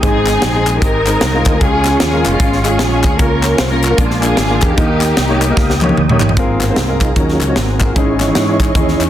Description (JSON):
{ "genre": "uptempo gospel", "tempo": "151 BPM", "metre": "4/4", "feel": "swing 62% on 8ths", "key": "Ab major", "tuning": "A4 = 440 Hz", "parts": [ { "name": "warm symphonic string section", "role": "melody", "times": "0.0-6.0 s", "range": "Ab3 to C5", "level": "-16 LUFS", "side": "right 1 dB", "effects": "none" }, { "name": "clear grand piano", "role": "accompaniment", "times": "0.0-9.0 s", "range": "Ab2 to Db5", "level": "-18 LUFS", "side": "left 3 dB", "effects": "none" }, { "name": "mellow tonewheel organ", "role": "sustained chords", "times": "0.0-9.1 s", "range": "Fb3 to Eb6", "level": "-21 LUFS", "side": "right 3 dB", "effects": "fast rotary speaker, chorus vibrato" }, { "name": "fingered electric bass", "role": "bass", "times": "0.0-9.1 s", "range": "F1 to Ab2", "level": "-18 LUFS", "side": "equal", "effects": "none" }, { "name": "crisp fusion drum kit", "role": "drums", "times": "0.0-9.1 s", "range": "hi-hat, kick drum, snare drum, toms", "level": "-16 LUFS", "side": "equal", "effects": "none" }, { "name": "group handclap", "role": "percussion", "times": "0.3-9.1 s", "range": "none", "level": "-23 LUFS", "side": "left 3 dB", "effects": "none" }, { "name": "warm symphonic string section", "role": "sustained chords", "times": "6.4-9.1 s", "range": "C5 to Db6", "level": "-29 LUFS", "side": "left 2 dB", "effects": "none" } ], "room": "light reverb", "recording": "dense, heavily limited modern master", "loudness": "-11 LUFS", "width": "side -11 dB against mid", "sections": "0.0-6.4 A section; 6.4-9.1 B section", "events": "drum fill 5.6-6.4; tonewheel organ solo 6.4-9.1", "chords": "0.0 Ab; 1.6 Db; 3.2 Bbm/Db; 4.0 Bb7; 4.8 Eb; 6.4 Ab69; 7.2 Ebm7; 7.6 Ab9; 8.0 Dbmadd9/Ab" }